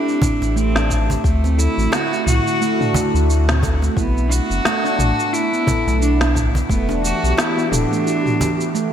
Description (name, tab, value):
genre	organic downtempo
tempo	88 BPM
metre	4/4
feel	swing 57% on 16ths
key	unclear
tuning	A4 = 440 Hz
part	rich cello	melody	0.0-8.9 s	A3 to F#4	-22 LUFS	equal	ping-pong delay
part	airy breathy pad	sustained chords	0.0-8.9 s	D3 to G4	-24 LUFS	equal	chorus, sidechain pumping
part	handpan	arpeggios	0.0-8.9 s	A3 to A4	-23 LUFS	right 2 dB	ping-pong delay
part	organic electronic drum kit	drums	0.1-8.9 s	cabasa, snare drum, toms	-23 LUFS	equal	studio reverb, gated reverb
part	electronic kick drum	drums	0.2-6.9 s	none	-22 LUFS	equal	overdrive, studio reverb
part	cajon	percussion	0.2-8.6 s	none	-25 LUFS	right 2 dB	none
part	warm sub bass	bass	0.4-7.9 s	D1 to D2	-18 LUFS	equal	sidechain pumping
room	moderate lush hall reverb, RT60 2.8 s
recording	bright 1980s-style digital production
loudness	-15 LUFS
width	side -9 dB against mid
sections	0.0-8.9 A section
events	kick drops out 8.1-8.9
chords	0.0 Am7; 1.2 D7; 4.0 Bm7; 6.7 Em7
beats	0.56 | 1.24 1.93 2.61 3.29 | 3.97 4.65 5.33 6.02 | 6.70 7.38 8.06 8.74